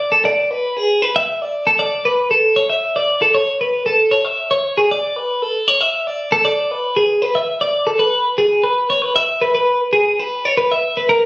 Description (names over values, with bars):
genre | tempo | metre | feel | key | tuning
rock | 77 BPM (dotted quarters) | 6/8 | straight | unclear | A4 = 440 Hz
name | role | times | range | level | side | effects
twelve-string electric guitar | solo | 0.0-11.3 s | G#4 to E5 | -14 LUFS | equal | none
room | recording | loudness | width
moderate studio reverb, RT60 0.8 s | recorded on a phone in the room, studio reverb, compression | -14 LUFS | side -20 dB against mid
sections
0.0-8.0 A section; 8.0-11.3 B section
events
none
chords
none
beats
| 0.23 1.01 | 1.78 2.56 | 3.33 4.11 | 4.88 5.66 | 6.43 7.21 | 7.98 8.76 | 9.53 10.31 | 11.09